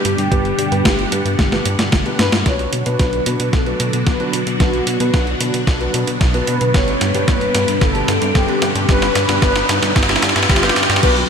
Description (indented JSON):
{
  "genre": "italo disco",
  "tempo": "112 BPM",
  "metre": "4/4",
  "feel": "straight",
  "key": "unclear",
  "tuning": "A4 = 440 Hz",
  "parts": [
    { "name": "analog synth brass", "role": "melody", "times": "0.0-11.2 s", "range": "F#4 to C#5", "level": "-22 LUFS", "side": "left 1 dB", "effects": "chorus, digital delay" },
    { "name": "phased string machine", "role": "sustained chords", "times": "0.0-11.3 s", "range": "B2 to F#5", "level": "-22 LUFS", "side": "equal", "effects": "ensemble chorus, phaser" },
    { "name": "dark concert grand piano", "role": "stabs", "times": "0.0-11.2 s", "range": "B3 to B4", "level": "-25 LUFS", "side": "equal", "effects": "low-pass filter" },
    { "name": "chorused synth bass", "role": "bass", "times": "0.1-11.2 s", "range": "G1 to B2", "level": "-22 LUFS", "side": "equal", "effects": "tube saturation" },
    { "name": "clean 12-bit digital drum machine", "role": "drums", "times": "0.1-11.3 s", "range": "crash cymbal, hi-hat, snare drum", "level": "-19 LUFS", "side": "equal", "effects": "overdrive, high-pass filter on hats, high-pass filter on snare, high-pass filter on cymbals, high-pass filter on room, gated reverb" },
    { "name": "electronic kick drum", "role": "drums", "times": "0.3-11.1 s", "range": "none", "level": "-16 LUFS", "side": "equal", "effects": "overdrive" },
    { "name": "riser", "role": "sound effects", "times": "5.6-11.0 s", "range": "none", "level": "-26 LUFS", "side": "equal", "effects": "none" }
  ],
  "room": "moderate lush hall reverb, RT60 2.8 s",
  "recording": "bright 1980s-style digital production",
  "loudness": "-14 LUFS",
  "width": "side -6 dB against mid",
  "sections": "0.0-2.5 A section; 2.5-11.0 B section",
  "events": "drum fill 1.4-2.5, 2.5-11.0; filter sweep on analog polysynth 2.5-11.0; riser 5.6-11.0",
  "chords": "0.0 G; 2.5 Bm; 6.7 G"
}